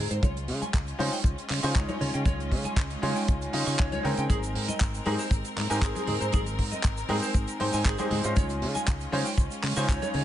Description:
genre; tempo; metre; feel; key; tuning
nu-disco, nu disco; 118 BPM; 4/4; straight; unclear; A4 = 441 Hz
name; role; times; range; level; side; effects
bright symphonic string section; sustained chords; 0.0-10.2 s; Ab3 to Bb4; -36 LUFS; equal; sidechain pumping
clean electric guitar; riff; 0.0-10.2 s; Ab4 to Db6; -35 LUFS; right 3 dB; lush chorus, low-pass filter, dub echo
fingered electric bass; bass; 0.0-10.2 s; Ab1 to Db3; -31 LUFS; equal; tube saturation
damped 70s drum kit; drums; 0.1-10.2 s; handclaps, hi-hat, shaker; -34 LUFS; right 3 dB; none
cabasa and congas; percussion; 0.1-10.2 s; none; -38 LUFS; left 4 dB; none
kick drum; drums; 0.2-10.0 s; none; -25 LUFS; equal; none
bright concert grand piano; accompaniment; 1.0-10.2 s; Ab3 to C6; -32 LUFS; left 1 dB; sidechain pumping, dub echo
room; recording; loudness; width
small room ambience; nothing above 10.4 kHz; -25 LUFS; side -12 dB against mid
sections
0.0-10.2 A section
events
none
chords
0.2 Dbmaj7; 4.3 Abmaj9; 8.4 Dbmaj7

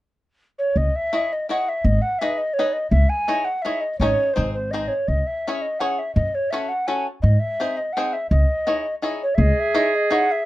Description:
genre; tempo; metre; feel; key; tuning
musette waltz; 167 BPM; 3/4; straight; C# minor; A4 = 440 Hz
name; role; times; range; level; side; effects
mellow hollow tenor recorder; melody; 0.6-10.5 s; B#4 to G#5; -22 LUFS; equal; none
upright bass; bass; 0.8-9.5 s; G#1 to G#2; -18 LUFS; equal; none
bluegrass banjo; accompaniment; 1.1-10.3 s; B#3 to D#5; -25 LUFS; left 2 dB; none
bright clarinet; second line; 9.4-10.5 s; G#4; -22 LUFS; right 3 dB; none
room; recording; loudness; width
light reverb; dark, warm production; -19 LUFS; side -16 dB against mid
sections
0.8-9.4 A section; 9.4-10.5 A section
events
none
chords
0.0 N.C.; 0.8 C#madd9; 1.8 G#m; 2.9 C#madd9; 4.0 G#sus4; 4.4 G#; 5.1 C#m; 6.2 F#m; 7.2 G#; 8.3 C#madd9

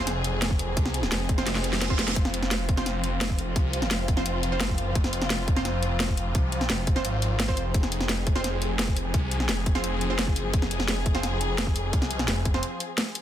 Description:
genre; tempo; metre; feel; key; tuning
dark technical drum and bass; 172 BPM; 4/4; straight; F minor; A4 = 440 Hz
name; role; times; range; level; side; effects
dark studio string section; sustained chords; 0.0-13.2 s; F3 to Ab4; -32 LUFS; left 2 dB; sidechain pumping
orchestra-hit-like synth stab; stabs; 0.0-12.9 s; C4 to C5; -34 LUFS; right 3 dB; built-in reverb, ping-pong delay
phased detuned saw bass; bass; 0.0-12.6 s; F1 to C2; -28 LUFS; equal; phaser, overdrive, sidechain pumping
drum and bass drum kit; drums; 0.1-13.2 s; hi-hat, snare drum; -28 LUFS; equal; overdrive
electronic kick drum; drums; 0.5-12.5 s; none; -25 LUFS; equal; overdrive
reverse cymbal; sound effects; 1.6-2.2 s; none; -34 LUFS; right 5 dB; none
room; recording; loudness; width
light reverb, digital ambience; dense, heavily limited modern master; -23 LUFS; side -11 dB against mid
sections
0.0-13.2 A section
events
drum fill 1.5-2.2; reverse cymbal 1.6-2.2; break 12.6-13.2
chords
0.0 F5

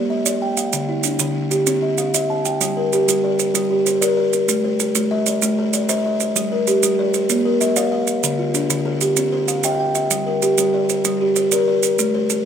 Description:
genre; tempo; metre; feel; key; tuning
southern african traditional, mbira-style interlocking cycle; 128 BPM (dotted quarters); 12/8; straight; G equiheptatonic; A4 = 440 Hz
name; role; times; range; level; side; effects
buzzing kalimba; arpeggios; 0.0-12.5 s; D3 to A5-29c; -17 LUFS; equal; none
maracas; percussion; 0.3-12.4 s; none; -20 LUFS; right 9 dB; none
room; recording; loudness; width
moderate studio reverb, RT60 0.6 s; none; -16 LUFS; side -8 dB against mid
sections
0.0-2.6 A section; 2.6-12.5 B section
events
none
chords
0.0 Bb; 0.7 Dm; 1.7 C; 2.6 Gm; 4.5 Am; 6.4 Gm; 7.3 Bb; 8.2 Dm; 9.2 C; 10.1 Gm

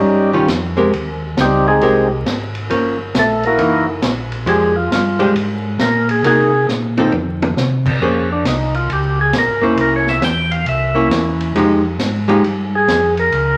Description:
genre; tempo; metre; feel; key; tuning
soul jazz organ trio; 136 BPM; 4/4; swing 65% on 8ths; Bb dorian from 8.0 s; A4 = 440 Hz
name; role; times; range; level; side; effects
percussive tonewheel organ; melody; 0.0-13.6 s; G3 to G5; -18 LUFS; equal; slow rotary speaker
mellow tonewheel organ; bass; 0.0-13.6 s; F1 to C3; -23 LUFS; equal; chorus vibrato, slow rotary speaker
archtop guitar, miked and amplified; accompaniment; 0.3-12.4 s; Eb3 to C5; -19 LUFS; equal; none
vintage drum kit; drums; 0.5-13.5 s; crash cymbal, hi-hat, kick drum, ride cymbal, snare drum, toms; -24 LUFS; equal; none
room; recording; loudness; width
wet large studio reverb, RT60 1.0 s; vinyl crackle; -16 LUFS; mono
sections
0.0-8.0 A section; 8.0-13.6 A section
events
tonewheel organ solo 0.0-13.6; drum fill 6.7-7.6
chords
0.0 Eb9; 0.9 Abmaj9; 2.7 Gm7b5; 3.6 Gb6; 4.5 Fm69; 6.2 Cm7b5; 7.1 F5; 8.0 Bbm9; 9.8 C7b9; 11.6 Fm9

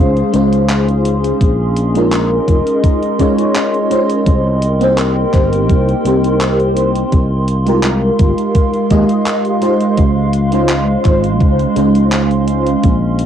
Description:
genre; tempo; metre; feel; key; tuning
vaporwave; 84 BPM; 4/4; straight; unclear; A4 = 441 Hz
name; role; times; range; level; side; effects
FM electric piano with soft pad layer; accompaniment; 0.0-12.9 s; Ab3 to Eb5; -15 LUFS; equal; phaser, ensemble chorus, cassette tape, tape echo
warbly tape-like pad; sustained chords; 0.0-13.3 s; Ab3 to C6; -18 LUFS; right 1 dB; chorus, built-in reverb, cassette tape, plate reverb
sustaining fretless electric bass; bass; 0.0-13.3 s; F1 to Eb2; -16 LUFS; equal; none
gated 80s digital drum machine; drums; 0.2-13.3 s; handclaps, hi-hat; -23 LUFS; equal; gated reverb, cassette tape
electronic kick drum; drums; 1.4-13.0 s; none; -13 LUFS; equal; cassette tape
room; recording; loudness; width
light reverb; home recording on cassette; -11 LUFS; side -9 dB against mid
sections
0.0-13.3 A section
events
none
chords
0.0 Dbmaj7; 1.4 Bbm11; 4.3 Cm7; 7.1 Fm7; 10.0 Dbmaj7

